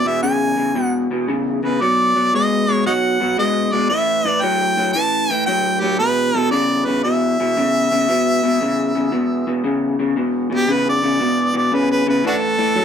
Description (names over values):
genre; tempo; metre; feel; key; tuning
blues; 115 BPM; 4/4; swing 66% on 8ths; E mixolydian; A4 = 440 Hz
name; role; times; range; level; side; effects
clear harmonica; melody; 0.0-12.8 s; D4 to A5; -18 LUFS; right 1 dB; overdrive, plate reverb
electric guitar through a small old amp; riff; 0.0-12.8 s; E2 to G#3; -18 LUFS; left 1 dB; lush chorus
room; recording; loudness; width
moderate small room reverb, RT60 0.5 s; none; -15 LUFS; side -8 dB against mid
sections
0.0-10.2 A section; 10.2-12.8 B section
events
harmonica solo 10.2-12.8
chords
0.0 E; 1.8 B; 3.9 A5; 6.0 E5; 12.2 A5